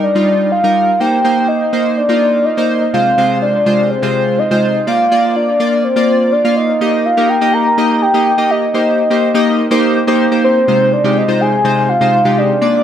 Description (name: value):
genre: pop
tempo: 124 BPM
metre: 4/4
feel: straight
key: Eb major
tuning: A4 = 440 Hz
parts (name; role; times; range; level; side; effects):
- soft octave-layered synth lead; melody; 0.0-12.8 s; C5 to Bb5; -13 LUFS; equal; chorus, tremolo, dub echo
- chorused retro synth keys; accompaniment; 0.0-12.8 s; C3 to F5; -14 LUFS; equal; dub echo
room: wet spring reverb, RT60 1.3 s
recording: echo-heavy mix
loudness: -11 LUFS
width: side -9 dB against mid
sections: 0.0-6.8 A section; 6.8-12.8 B section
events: build-up 0.0-6.8; drop 6.8-12.8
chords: 0.0 Eb; 1.0 Cm7; 2.9 Ab6/C; 4.9 Bb; 6.8 Eb; 8.7 Cm7; 10.7 Ab6/C